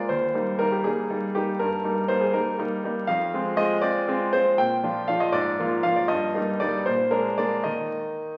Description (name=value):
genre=classical-period piano sonatina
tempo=80 BPM (dotted quarters)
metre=6/8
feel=straight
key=Eb major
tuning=A4 = 440 Hz
part: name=bright concert grand piano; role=solo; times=0.0-8.4 s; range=Eb2 to G5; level=-24 LUFS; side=equal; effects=none
room=wet recital hall reverb, RT60 1.2 s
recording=very old 78 rpm record, vinyl crackle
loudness=-24 LUFS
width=mono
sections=0.0-8.4 A section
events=none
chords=0.1 Eb; 1.6 Eb/G; 3.1 Fm; 4.6 Bb; 5.3 Bb7/Ab; 6.1 Eb/G; 6.9 Bb7; 7.6 Eb5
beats=| 0.09 0.84 | 1.59 2.34 | 3.09 3.83 | 4.59 5.34 | 6.09 6.86 | 7.64